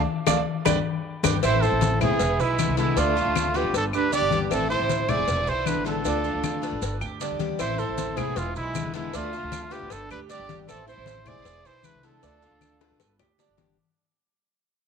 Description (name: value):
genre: latin, Cuban son and guajira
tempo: 156 BPM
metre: 4/4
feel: straight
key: A minor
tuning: A4 = 441 Hz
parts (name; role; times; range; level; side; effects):
- upright bass; bass; 0.0-13.8 s; E1 to E2; -30 LUFS; equal; none
- picked plugged-in steel-string acoustic guitar; accompaniment; 0.3-13.8 s; D3 to G4; -32 LUFS; left 12 dB; none
- Cuban tres; arpeggios; 0.3-13.8 s; D4 to A5; -30 LUFS; right 11 dB; none
- bongos and cowbell; percussion; 0.3-13.8 s; none; -33 LUFS; left 14 dB; none
- claves; percussion; 0.3-13.4 s; none; -35 LUFS; left 13 dB; none
- congas; percussion; 0.3-13.8 s; none; -30 LUFS; left 8 dB; none
- maracas; percussion; 0.3-13.8 s; none; -37 LUFS; right 16 dB; none
- breathy trumpet; melody; 1.4-13.2 s; E4 to D5; -28 LUFS; equal; none
- clear studio violin section; second line; 1.4-13.2 s; G#3 to G#4; -32 LUFS; right 11 dB; none
room: moderate spring reverb, RT60 2.2 s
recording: 1960s-style stereo with parts hard left and right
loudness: -22 LUFS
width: side -6 dB against mid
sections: 0.0-1.4 A section; 1.4-13.8 B section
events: band accent 0.0-1.4; Cuban tres solo 0.0-1.4; drum fill 0.7-1.4, 12.8-13.8; fade-out 1.4-13.8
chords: 0.0 Dm; 0.7 G; 1.4 Am; 2.2 E7; 3.0 Dm; 3.7 G; 4.5 Am; 5.3 E7; 6.1 Dm; 6.8 G; 7.6 Am; 8.4 E7; 9.1 Dm; 9.9 G; 10.7 Am; 11.5 E7; 12.2 Dm; 13.0 G